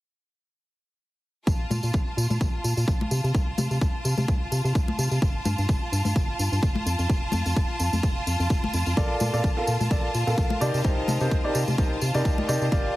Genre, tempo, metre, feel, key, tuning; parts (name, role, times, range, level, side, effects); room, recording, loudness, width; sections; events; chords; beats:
piano house; 128 BPM; 4/4; swing 55% on 16ths; Bb major; A4 = 439 Hz
bright symphonic violin section; sustained chords; 1.5-13.0 s; F4 to A5; -32 LUFS; equal; sidechain pumping
organ-like FM bass; bass; 1.5-12.9 s; F1 to C3; -26 LUFS; equal; sidechain pumping
electronic kick drum; drums; 1.5-12.8 s; -24 LUFS; equal
tambourine and congas; percussion; 1.5-12.8 s; -32 LUFS; left 2 dB
clear upright piano; riff; 9.0-13.0 s; Eb4 to F5; -27 LUFS; equal; sidechain pumping, digital delay
riser; sound effects; 12.7-13.0 s; barely audible
small room reverb; heavily compressed radio sound, multiband compression, lossy compression artefacts; -22 LUFS; side -17 dB against mid
1.5-13.0 A section
filter sweep on FM bass 1.5-13.0
1.5 Bb5; 3.1 F/C; 5.2 Fadd9/G; 6.9 F; 9.0 Bbmaj7; 10.6 Cm7
| 1.47 1.94 2.41 2.88 | 3.35 3.81 4.28 4.75 | 5.22 5.69 6.16 6.63 | 7.10 7.57 8.03 8.50 | 8.97 9.44 9.91 10.38 | 10.85 11.31 11.78 12.25 | 12.72